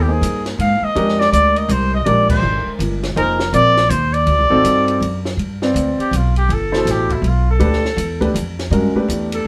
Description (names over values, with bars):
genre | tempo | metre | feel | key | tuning
modal jazz | 162 BPM | 3/4 | swing 63% on 8ths | Bb mixolydian, G mixolydian from 5.4 s | A4 = 441 Hz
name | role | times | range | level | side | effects
warm trumpet | melody | 0.0-9.5 s | E4 to F5 | -20 LUFS | equal | none
warm concert grand piano | accompaniment | 0.0-9.5 s | B2 to D5 | -22 LUFS | equal | none
upright bass | bass | 0.0-9.4 s | F1 to Ab2 | -21 LUFS | equal | none
compact cocktail drum kit | drums | 0.2-9.4 s | crash cymbal, hi-hat, kick drum, ride cymbal, snare drum | -30 LUFS | equal | none
room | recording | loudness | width
moderate small room ambience, RT60 0.5 s | band playing live in one room | -16 LUFS | mono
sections
0.0-5.4 A section; 5.4-9.5 B section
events
band accent 2.2; trumpet solo 5.4-9.5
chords
0.0 Bb9sus4; 4.3 D7b9; 5.4 G13